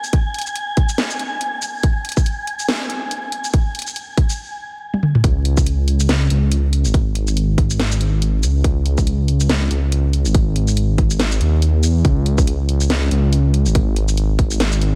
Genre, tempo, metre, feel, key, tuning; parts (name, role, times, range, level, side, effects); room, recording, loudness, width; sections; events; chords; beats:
deep dubstep; 141 BPM; 4/4; swing 57% on 16ths, half-time; A4 = 440 Hz
garage drum kit; drums; 0.0-14.9 s; hi-hat, shaker, snare drum, toms; -25 LUFS; equal
wind-like tuned noise texture; texture; 0.0-4.4 s; G#5; -29 LUFS; equal; built-in reverb
electronic kick drum; drums; 0.1-14.5 s; -19 LUFS; equal
dark detuned saw bass; bass; 5.2-15.0 s; G#1 to E2; -18 LUFS; equal
light reverb; dense, heavily limited modern master, vinyl crackle; -18 LUFS; mono
0.0-5.2 A section; 5.2-15.0 B section
build-up 0.0-5.2; drum fill 4.9-5.2; drop 5.2-15.0
0.0 N.C.; 5.2 C#5
| 0.13 0.56 0.98 1.41 | 1.84 2.26 2.69 3.11 | 3.54 3.96 4.39 4.81 | 5.24 5.67 6.09 6.52 | 6.94 7.37 7.79 8.22 | 8.64 9.07 9.49 9.92 | 10.35 10.77 11.20 11.62 | 12.05 12.47 12.90 13.32 | 13.75 14.18 14.60